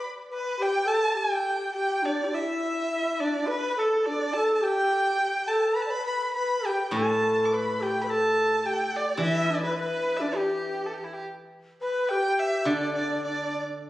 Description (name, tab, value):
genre	chinese traditional, Chinese chamber ensemble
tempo	105 BPM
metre	2/4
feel	rubato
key	G gong mode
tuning	A4 = 440 Hz
part	rich erhu	melody	0.0-13.6 s	E4 to D6	-27 LUFS	right 1 dB	none
part	breathy bright low xiao	second line	0.0-13.6 s	D4 to D5	-27 LUFS	left 1 dB	none
part	steel-string zither	accompaniment	6.9-13.9 s	A2 to E3	-31 LUFS	equal	none
room	wet recital hall reverb, RT60 1.7 s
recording	recorded on a phone in the room, studio reverb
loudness	-24 LUFS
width	side -15 dB against mid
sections	0.0-2.3 A section; 2.3-11.5 B section; 11.5-13.9 A section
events	none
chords	none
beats	| 0.04 0.60 | 1.17 1.75 | 2.33 2.91 | 3.48 4.05 | 4.62 5.18 | 5.75 6.33 | 6.93 7.50 | 8.07 8.64 | 9.20 9.77 | 10.34 10.93 | 11.51 12.10 | 12.66 13.22 | 13.78